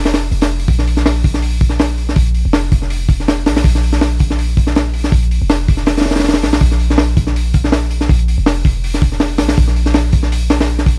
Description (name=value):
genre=drum and bass, jungle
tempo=162 BPM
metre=4/4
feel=swing 54% on 16ths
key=unclear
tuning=A4 = 439 Hz
part: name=warm 808-style bass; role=bass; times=0.0-11.0 s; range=F1 to Bb1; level=-15 LUFS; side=equal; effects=none
part: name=crunchy breakbeat drum kit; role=drums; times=0.0-11.0 s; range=hi-hat, kick drum, snare drum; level=-13 LUFS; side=equal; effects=none
room=little or no reverb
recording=vinyl crackle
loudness=-11 LUFS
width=side -28 dB against mid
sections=0.0-11.0 A section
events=none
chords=none